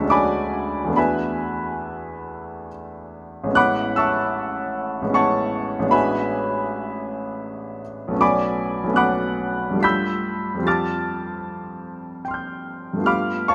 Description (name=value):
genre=classical, impressionist solo piano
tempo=66-83 BPM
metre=3/4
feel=rubato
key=unclear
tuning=A4 = 440 Hz
part: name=clear baby grand piano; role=solo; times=0.0-13.5 s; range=A1 to B6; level=-23 LUFS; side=equal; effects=none
room=moderate concert hall reverb, RT60 2.4 s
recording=none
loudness=-22 LUFS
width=mono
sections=0.0-13.5 A section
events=none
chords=0.0 Dmaj7#11; 1.0 E9sus4; 3.6 Amaj9; 8.2 Bm9; 9.8 G9; 10.7 Fadd9